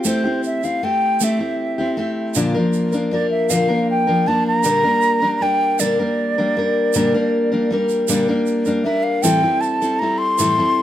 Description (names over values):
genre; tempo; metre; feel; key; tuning
acoustic folk duo or small band; 52 BPM (dotted quarters); 6/8; straight; unclear; A4 = 441 Hz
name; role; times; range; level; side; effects
picked steel-string acoustic guitar; accompaniment; 0.0-10.8 s; A2 to Bb4; -18 LUFS; left 1 dB; none
tube shaker; percussion; 0.0-10.6 s; none; -26 LUFS; right 11 dB; none
wooden flute; melody; 0.1-10.8 s; C5 to C6; -19 LUFS; equal; none
room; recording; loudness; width
light reverb; close, detailed microphones; -16 LUFS; side -12 dB against mid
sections
0.1-10.8 A section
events
flute solo 0.1-10.8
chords
0.1 Am7; 2.3 Bb; 4.6 Gm/Bb; 9.2 Am7